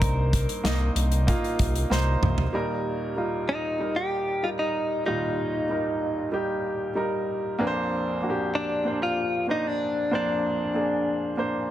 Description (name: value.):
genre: piano-driven pop.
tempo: 95 BPM.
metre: 4/4.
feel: straight.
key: Eb major.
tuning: A4 = 440 Hz.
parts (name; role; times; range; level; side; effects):
direct-recorded clean electric guitar; melody; 0.0-11.4 s; D4 to Bb4; -27 LUFS; left 1 dB; none.
clear upright piano; accompaniment; 0.0-11.7 s; Bb1 to Eb5; -27 LUFS; right 1 dB; none.
fat analog bass; bass; 0.0-2.5 s; C2; -24 LUFS; equal; none.
natural country drum kit; drums; 0.0-2.5 s; hi-hat, kick drum, snare drum, toms; -26 LUFS; equal; none.
room: light reverb, small room ambience.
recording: dense, heavily limited modern master.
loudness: -24 LUFS.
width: side -12 dB against mid.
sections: 0.0-2.5 A section; 2.5-11.7 B section.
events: drum fill 1.9-2.5.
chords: 0.0 Cm7; 2.5 Eb; 7.6 Bbadd9.